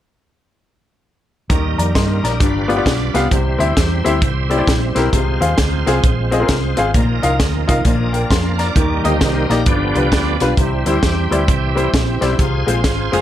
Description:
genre	uptempo gospel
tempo	132 BPM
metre	4/4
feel	swing 63% on 8ths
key	Eb major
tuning	A4 = 440 Hz
part	bright upright piano	accompaniment	1.5-13.2 s	G2 to C6	-19 LUFS	left 3 dB	none
part	bright tonewheel organ	sustained chords	1.5-13.2 s	D3 to F5	-22 LUFS	right 3 dB	slow rotary speaker, chorus vibrato
part	hollow-body short-scale fingered electric bass	bass	1.5-13.2 s	F1 to G2	-20 LUFS	right 1 dB	none
part	crisp fusion drum kit	drums	1.5-13.2 s	hi-hat, kick drum, snare drum	-18 LUFS	equal	none
part	warm woodwind section	sustained chords	8.7-13.2 s	Bb4 to C6	-29 LUFS	right 1 dB	none
room	light reverb, studio ambience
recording	none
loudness	-14 LUFS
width	side -12 dB against mid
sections	1.5-8.8 A section; 8.8-13.2 B section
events	tonewheel organ solo 8.8-13.2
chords	1.5 Eb; 2.4 G7; 3.3 C; 5.1 Fm/C; 6.9 Bbsus4; 7.9 Bb; 8.8 Eb; 9.7 G7; 10.6 C; 12.4 Fm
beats	| 1.50 1.95 2.41 2.86 | 3.31 3.77 4.22 4.68 | 5.13 5.58 6.04 6.49 | 6.95 7.40 7.85 8.31 | 8.76 9.21 9.67 10.12 | 10.57 11.03 11.48 11.94 | 12.39 12.84

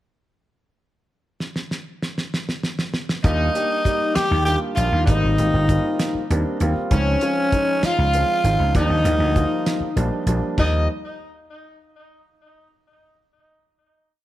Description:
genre	electric jazz fusion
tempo	65 BPM (dotted quarters)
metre	6/8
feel	straight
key	Eb major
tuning	A4 = 440 Hz
part	damped 70s drum kit	drums	1.4-10.7 s	crash cymbal, hi-hat, kick drum, snare drum	-23 LUFS	equal	none
part	growling tenor saxophone	melody	3.2-10.9 s	Db4 to G4	-23 LUFS	equal	tape echo
part	overdriven semi-hollow guitar	second line	3.2-10.9 s	Db4 to Eb5	-27 LUFS	left 5 dB	tremolo
part	warm concert grand piano	accompaniment	3.2-10.9 s	F3 to D5	-26 LUFS	right 1 dB	none
part	vintage slap bass	bass	3.2-10.9 s	G1 to Eb2	-20 LUFS	equal	none
room	moderate large studio reverb, RT60 1.2 s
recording	none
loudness	-18 LUFS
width	side -14 dB against mid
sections	1.4-3.2 pickup bar; 3.2-10.6 A section; 10.6-12.4 final chord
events	drum fill 1.4-3.2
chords	1.4 N.C.; 3.2 Ebmaj9; 5.1 Abmaj9; 6.9 Dbmaj9; 8.8 Ebmaj9; 10.6 Ebadd9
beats	| 1.41 2.33 | 3.24 4.16 | 5.08 6.00 | 6.92 7.83 | 8.75 9.67 | 10.58

